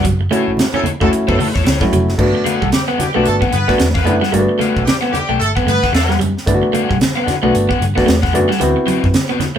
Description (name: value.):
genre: funk.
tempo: 112 BPM.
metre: 4/4.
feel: swing 60% on 16ths.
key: unclear.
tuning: A4 = 440 Hz.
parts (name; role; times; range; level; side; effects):
crunchy overdriven guitar; accompaniment; 0.0-9.6 s; C4 to G5; -21 LUFS; left 8 dB; none.
electric guitar at the edge of break-up; riff; 0.0-9.6 s; E3 to C#4; -21 LUFS; right 2 dB; none.
vintage muted fingered electric bass; bass; 0.0-9.4 s; F1 to G2; -19 LUFS; equal; none.
crisp fusion drum kit; drums; 0.0-9.6 s; crash cymbal, hi-hat, kick drum, snare drum; -19 LUFS; right 1 dB; none.
congas; percussion; 0.2-9.6 s; none; -26 LUFS; right 1 dB; none.
overdriven clav; stabs; 0.3-9.1 s; A3 to F#4; -17 LUFS; equal; none.
clear horn section; second line; 0.7-6.2 s; F#3 to B4; -21 LUFS; equal; none.
room: moderate studio reverb, RT60 0.6 s.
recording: band playing live in one room.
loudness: -12 LUFS.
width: side -9 dB against mid.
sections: 0.0-2.2 A section; 2.2-9.6 B section.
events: none.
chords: 0.0 F#m7; 2.2 Gmaj9; 8.6 D13.